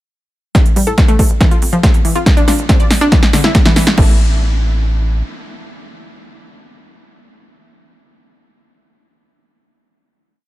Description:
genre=uplifting trance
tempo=140 BPM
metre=4/4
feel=straight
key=unclear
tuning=A4 = 440 Hz
part: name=wide unison pluck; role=arpeggios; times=0.5-4.2 s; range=D3 to D5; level=-18 LUFS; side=left 1 dB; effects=sidechain pumping, dub echo
part: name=big-room dance drum kit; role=drums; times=0.5-4.1 s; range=crash cymbal, hi-hat, snare drum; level=-17 LUFS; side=equal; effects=overdrive
part: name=electronic kick drum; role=drums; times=0.5-4.1 s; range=none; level=-11 LUFS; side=equal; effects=overdrive
part: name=tight sequencer bass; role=bass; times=0.8-5.2 s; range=D1 to A2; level=-17 LUFS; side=equal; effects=sidechain pumping, high-pass filter
room=little or no reverb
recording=none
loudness=-10 LUFS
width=side -16 dB against mid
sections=0.5-4.0 build; 4.0-7.4 final chord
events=build-up 0.5-4.0; drum fill 0.5-4.0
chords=none

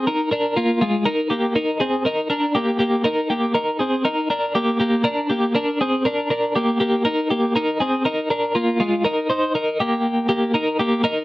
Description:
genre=indie pop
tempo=120 BPM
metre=4/4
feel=straight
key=C minor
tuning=A4 = 440 Hz
part: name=twelve-string electric guitar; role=solo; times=0.0-11.2 s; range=Ab3 to C5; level=-18 LUFS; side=equal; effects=tremolo
room=moderate booth ambience, RT60 0.2 s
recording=dry, close 1970s-style studio recording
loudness=-18 LUFS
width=side -18 dB against mid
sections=0.0-9.0 A section; 9.0-11.2 B section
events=none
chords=0.0 Ebsus2; 1.1 Cm7; 5.1 Gm; 6.8 Ebsus2; 9.0 Cm7 (rootless)

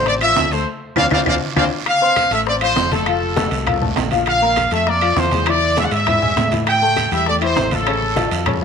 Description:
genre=latin, salsa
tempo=200 BPM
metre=4/4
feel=straight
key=unclear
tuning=A4 = 440 Hz
part: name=brilliant trumpet section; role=melody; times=0.0-8.6 s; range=A4 to G5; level=-18 LUFS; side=right 1 dB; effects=none
part: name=bright baby grand piano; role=accompaniment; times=0.0-8.6 s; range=C#3 to C6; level=-22 LUFS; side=left 11 dB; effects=none
part: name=fingered electric bass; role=bass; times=0.0-8.6 s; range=F1 to A2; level=-23 LUFS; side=right 1 dB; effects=none
part: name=bongos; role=percussion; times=0.1-8.6 s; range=none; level=-28 LUFS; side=left 12 dB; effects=none
part: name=congas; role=percussion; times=0.1-8.6 s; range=none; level=-25 LUFS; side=right 1 dB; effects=none
part: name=guiro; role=percussion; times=0.1-8.6 s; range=none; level=-31 LUFS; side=right 13 dB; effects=none
part: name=timbales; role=percussion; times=0.1-8.6 s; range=none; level=-26 LUFS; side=right 14 dB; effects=none
part: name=claves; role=percussion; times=0.2-8.6 s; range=none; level=-28 LUFS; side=left 13 dB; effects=none
room=wet spring reverb, RT60 1.4 s, studio reverb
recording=1960s-style stereo with parts hard left and right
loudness=-14 LUFS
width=side -6 dB against mid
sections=0.0-1.9 A section; 1.9-8.6 A section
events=drum fill 0.7-1.9; band accent 0.7-1.9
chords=0.0 Dm7; 1.9 F; 4.3 Bbmaj9#11; 5.5 E7; 6.7 Am7; 7.9 Aaug

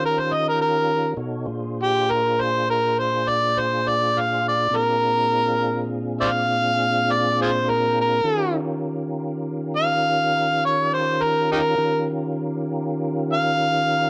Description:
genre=blues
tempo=68 BPM (dotted quarters)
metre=12/8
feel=straight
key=Bb mixolydian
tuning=A4 = 440 Hz
part: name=mellow tonewheel organ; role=sustained chords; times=0.0-14.1 s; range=Bb2 to Db5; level=-28 LUFS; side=equal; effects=chorus vibrato, slow rotary speaker
part: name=overdriven harmonica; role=melody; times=0.1-14.1 s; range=Eb4 to F5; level=-22 LUFS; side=equal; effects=none
room=light reverb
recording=dark, warm production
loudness=-22 LUFS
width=mono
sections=0.0-14.1 A section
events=harmonica solo 0.0-14.1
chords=0.0 Eb9; 1.2 Bb9; 8.2 Eb9

